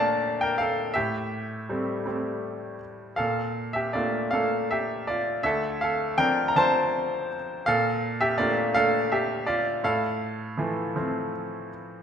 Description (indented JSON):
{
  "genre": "classical, lyrical solo piano",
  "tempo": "54 BPM (dotted quarters)",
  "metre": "6/8",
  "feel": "rubato",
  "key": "unclear",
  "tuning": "A4 = 439 Hz",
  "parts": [
    { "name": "bright baby grand piano", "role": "solo", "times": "0.0-12.0 s", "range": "D2 to Bb5", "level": "-24 LUFS", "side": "equal", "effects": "none" }
  ],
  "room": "moderate scoring stage reverb, RT60 1.4 s",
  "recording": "recorded in a church or concert hall",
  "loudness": "-24 LUFS",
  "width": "side -8 dB against mid",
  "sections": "0.0-12.0 A section",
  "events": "none",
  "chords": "0.0 Bbmaj7; 1.0 Am7; 3.2 Bbmaj7; 5.4 Dm7; 7.7 Bbmaj7; 9.8 Fmaj7/A"
}